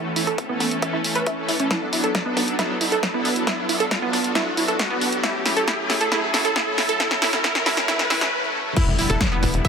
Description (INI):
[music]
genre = uplifting trance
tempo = 136 BPM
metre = 4/4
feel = straight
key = unclear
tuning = A4 = 440 Hz
[part]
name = filtered supersaw swell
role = sustained chords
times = 0.0-9.7 s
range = D3 to A4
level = -26 LUFS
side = left 1 dB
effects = sidechain pumping
[part]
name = riser and impact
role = sound effects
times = 0.0-9.7 s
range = none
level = -28 LUFS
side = left 1 dB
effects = none
[part]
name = wide unison pluck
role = arpeggios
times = 0.2-9.7 s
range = B3 to E5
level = -24 LUFS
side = moving between equal and right 6 dB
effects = auto-pan, sidechain pumping, ping-pong delay
[part]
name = punchy analog drum machine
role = drums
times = 0.2-9.7 s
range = crash cymbal, hi-hat, snare drum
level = -24 LUFS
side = equal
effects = none
[part]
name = electronic kick drum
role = drums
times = 0.4-9.7 s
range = none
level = -23 LUFS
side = left 1 dB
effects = high-pass filter on kick
[part]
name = tight sequencer bass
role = bass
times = 8.9-9.6 s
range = E1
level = -23 LUFS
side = left 1 dB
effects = sidechain pumping
[sound]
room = moderate huge ambient reverb, RT60 7.5 s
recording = high-pass filter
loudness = -19 LUFS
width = side -6 dB against mid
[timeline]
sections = 0.0-8.8 A section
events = build-up 0.0-8.8; riser 0.0-8.3; filter sweep on synth pluck 0.0-8.8; drum fill 1.7-8.3; break 8.3-8.8; impact 8.8-9.7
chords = 0.0 A; 1.7 Bm7; 5.2 F#m; 8.8 Em7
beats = 0.38 0.82 1.26 | 1.71 2.15 2.59 3.03 | 3.47 3.91 4.35 4.79 | 5.24 5.68 6.12 6.56 | 7.00 7.44 7.88 8.32 | 8.77 9.21 9.65